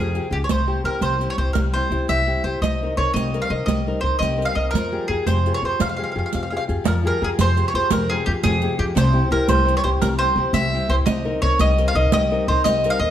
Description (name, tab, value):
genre	italian folk, Italian serenade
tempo	114 BPM (dotted quarters)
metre	6/8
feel	straight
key	F minor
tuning	A4 = 440 Hz
part	bowl-back mandolin	melody	0.0-13.1 s	G4 to F5	-22 LUFS	right 1 dB	none
part	nylon-string guitar	accompaniment	0.0-13.1 s	C3 to Bb4	-26 LUFS	left 3 dB	none
part	upright bass	bass	0.0-13.1 s	C2 to F2	-22 LUFS	equal	none
part	riq	percussion	0.1-12.9 s	none	-26 LUFS	right 5 dB	none
room	moderate recital hall reverb, RT60 1.4 s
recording	none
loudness	-18 LUFS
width	side -10 dB against mid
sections	0.0-6.9 A section; 6.9-13.1 A section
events	none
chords	0.5 C; 2.6 Cm7; 4.7 Fmadd9; 9.0 C; 11.1 Cm7